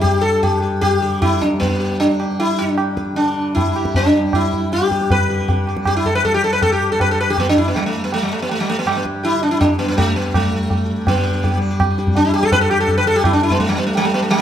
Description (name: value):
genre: indian classical, Hindustani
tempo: 151-170 BPM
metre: 4/4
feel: straight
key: G raga bhupali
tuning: A4 = 438 Hz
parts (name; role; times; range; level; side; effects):
- sitar; melody; 0.0-14.4 s; G3 to B4; -17 LUFS; equal; none
- tanpura; drone; 0.0-14.4 s; G2 to G3; -24 LUFS; equal; none
- tabla; percussion; 0.0-14.4 s; none; -20 LUFS; equal; none
room: wet recital hall reverb, RT60 1.4 s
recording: close, detailed microphones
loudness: -15 LUFS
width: side -10 dB against mid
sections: 0.0-11.1 A section; 11.1-14.4 B section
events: speeding up 0.0-14.4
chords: none